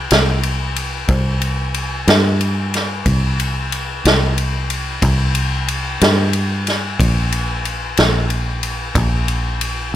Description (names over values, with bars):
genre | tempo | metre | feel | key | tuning
slow blues | 61 BPM (dotted quarters) | 12/8 | straight | unclear | A4 = 442 Hz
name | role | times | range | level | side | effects
fingered electric bass | bass | 0.0-9.9 s | Bb1 to G2 | -18 LUFS | equal | none
natural country drum kit | drums | 0.1-9.8 s | kick drum, ride cymbal, snare drum | -18 LUFS | left 1 dB | none
room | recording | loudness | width
light reverb | none | -15 LUFS | side -12 dB against mid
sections
0.0-10.0 A section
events
none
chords
none